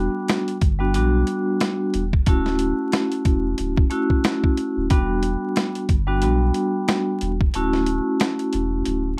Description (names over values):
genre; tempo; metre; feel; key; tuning
hip hop, boom-bap hip-hop; 91 BPM; 4/4; swing 57% on 16ths; E dorian; A4 = 439 Hz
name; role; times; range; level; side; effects
vibraphone with medium mallets; accompaniment; 0.0-9.2 s; G3 to F#4; -24 LUFS; equal; cassette tape, high-pass filter, low-pass filter
warm sub bass; bass; 0.0-9.2 s; D1 to B1; -26 LUFS; equal; none
boom bap sampler-style drum kit; drums; 0.3-9.0 s; hi-hat, kick drum, snare drum; -23 LUFS; equal; none
room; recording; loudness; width
light reverb; vinyl crackle; -21 LUFS; mono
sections
0.0-9.2 A section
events
kick muted 7.5-9.2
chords
0.0 Em7; 2.3 Dmaj7; 4.9 Em7; 7.5 Dmaj7